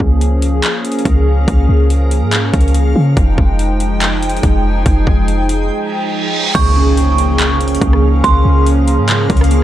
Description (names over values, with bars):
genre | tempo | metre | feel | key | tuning
hip hop, atmospheric cloud-rap | 142 BPM | 4/4 | half-time | Db lydian | A4 = 441 Hz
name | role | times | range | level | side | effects
hollow soft pad | sustained chords | 0.0-9.6 s | F3 to G5 | -18 LUFS | equal | chorus, sidechain pumping
clean 808-style bass | bass | 0.0-9.6 s | F1 to Db3 | -13 LUFS | equal | none
trap drum kit | drums | 0.0-9.6 s | crash cymbal, handclaps, hi-hat, kick drum, rim click | -16 LUFS | equal | overdrive
backwards swelling texture | texture | 0.0-9.6 s | Db4 to G5 | -24 LUFS | right 1 dB | built-in reverb
reverse cymbal and impact | sound effects | 5.9-8.2 s | none | -22 LUFS | right 2 dB | none
dark detuned synth bell | melody | 6.5-9.0 s | C6 to Db6 | -19 LUFS | right 4 dB | chorus, phaser, low-pass filter, tape echo
mellow electric guitar | arpeggios | 6.5-9.6 s | Db3 to Bb5 | -21 LUFS | right 6 dB | lush chorus, low-pass filter, tape echo
room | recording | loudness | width
little or no reverb | none | -11 LUFS | side -12 dB against mid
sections
0.0-6.5 A section; 6.5-9.6 B section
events
break 5.7-6.5; reverse cymbal 5.9-6.5; impact 6.5-8.2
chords
0.0 Db6; 3.2 Fm9; 6.5 Db6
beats
0.21 0.63 1.06 | 1.48 1.90 2.32 2.75 | 3.17 3.59 4.01 4.44 | 4.86 5.28 5.70 6.13 | 6.55 6.97 7.39 7.82 | 8.24 8.66 9.08 9.51